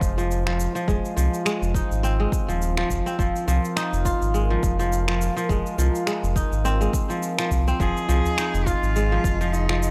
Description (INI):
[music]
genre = organic downtempo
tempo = 104 BPM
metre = 4/4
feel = swing 56% on 16ths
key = F minor pentatonic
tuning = A4 = 441 Hz
[part]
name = warm analog pad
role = sustained chords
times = 0.0-9.9 s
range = F4 to F5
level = -35 LUFS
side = equal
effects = chorus, sidechain pumping
[part]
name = kora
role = arpeggios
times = 0.0-9.9 s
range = F3 to F4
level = -28 LUFS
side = equal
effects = tape echo
[part]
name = round analog bass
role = bass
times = 0.0-9.9 s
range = Eb1 to C2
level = -26 LUFS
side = equal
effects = tube saturation, sidechain pumping
[part]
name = electronic kick drum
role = drums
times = 0.0-9.4 s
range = none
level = -28 LUFS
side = equal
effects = overdrive
[part]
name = electronic shaker and finger snaps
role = drums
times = 0.0-9.9 s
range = none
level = -34 LUFS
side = equal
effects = overdrive
[part]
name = quartz singing bowl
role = texture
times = 0.0-9.9 s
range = C5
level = -47 LUFS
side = equal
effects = none
[part]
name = rich cello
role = melody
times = 7.8-9.9 s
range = Eb4 to Ab4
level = -31 LUFS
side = equal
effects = tape echo
[part]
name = udu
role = percussion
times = 8.1-8.4 s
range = none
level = -31 LUFS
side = equal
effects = none
[sound]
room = studio reverb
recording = dry, gritty hardware recording, transformer saturation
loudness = -23 LUFS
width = mono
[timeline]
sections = 0.0-9.9 A section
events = none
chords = 0.0 Fm7